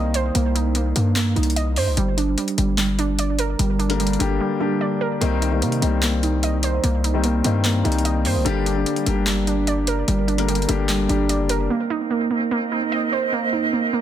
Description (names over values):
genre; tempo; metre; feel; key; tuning
hip hop, trap; 148 BPM; 4/4; half-time; unclear; A4 = 440 Hz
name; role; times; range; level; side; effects
warm concert grand piano; accompaniment; 0.0-11.7 s; D3 to Bb4; -24 LUFS; left 6 dB; none
warbly dusty pluck; arpeggios; 0.0-14.0 s; G3 to Eb5; -23 LUFS; right 5 dB; chorus, tape echo
hard-hitting 808-style bass; bass; 0.0-11.7 s; F#1 to C3; -22 LUFS; left 1 dB; none
booming analog drum machine; drums; 0.1-11.6 s; handclaps, hi-hat; -26 LUFS; left 2 dB; none
flute section; sustained chords; 11.7-14.0 s; C4 to Eb5; -24 LUFS; right 4 dB; none
room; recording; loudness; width
small room ambience; dense, heavily limited modern master; -18 LUFS; side -10 dB against mid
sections
0.0-11.7 A section; 11.7-14.0 B section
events
silent gap 4.4-5.2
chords
0.0 Cm7; 2.0 Gm; 5.2 Cm7; 8.5 Gm; 11.7 Cm7